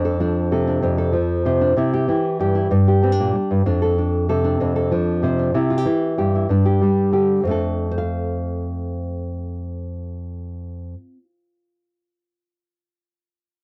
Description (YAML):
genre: highlife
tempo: 127 BPM (dotted quarters)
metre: 12/8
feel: straight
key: F major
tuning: A4 = 438 Hz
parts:
  - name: nylon-string guitar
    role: accompaniment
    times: 0.0-11.2 s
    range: F2 to F5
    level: -20 LUFS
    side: equal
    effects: cassette tape
room: moderate booth ambience, RT60 0.2 s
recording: home recording on cassette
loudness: -20 LUFS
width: mono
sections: 0.0-7.4 A section; 7.4-11.2 B section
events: none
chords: 0.0 F6; 1.8 C; 2.7 Gm; 3.6 F6; 5.5 C; 6.5 G5; 7.4 F